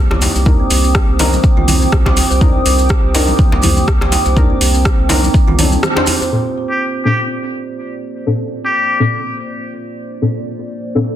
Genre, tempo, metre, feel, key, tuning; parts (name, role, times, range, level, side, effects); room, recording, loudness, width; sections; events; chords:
afro house; 123 BPM; 4/4; swing 55% on 16ths; A4 = 439 Hz
dark analog pad; sustained chords; 0.1-11.2 s; Bb3 to Eb6; -22 LUFS; right 1 dB; chorus, phaser, sidechain pumping
kalimba; arpeggios; 0.0-6.3 s; Bb3 to C5; -22 LUFS; right 3 dB; sidechain pumping, low-pass filter, tape echo
deep mellow chord stab; stabs; 0.0-11.2 s; Bb2 to C5; -19 LUFS; left 1 dB; chorus, sidechain pumping, tape echo
round analog bass; bass; 0.0-5.8 s; C2; -16 LUFS; equal; sidechain pumping
deep house drum kit; drums; 0.1-6.2 s; hi-hat, rim click; -18 LUFS; equal; overdrive
congas; percussion; 0.1-6.2 s; -23 LUFS; right 2 dB
djembe; percussion; 0.1-6.3 s; -22 LUFS; left 1 dB
maracas; percussion; 0.2-6.3 s; -27 LUFS; left 5 dB
electronic kick drum; drums; 0.5-5.4 s; -13 LUFS; equal; overdrive
trumpet with straight mute; melody; 6.7-9.0 s; G4; -18 LUFS; left 2 dB; vintage 12-bit sampler grit, tape echo
light reverb, small room ambience; dense, heavily limited modern master; -11 LUFS; side -11 dB against mid
0.0-6.3 A section; 6.3-11.2 B section
break 5.8-6.3; band accent 5.8; filter sweep on synth stab 6.3-11.2; filter sweep on analog synth pad 6.3-11.2
0.0 Cm9; 6.3 Bbmaj7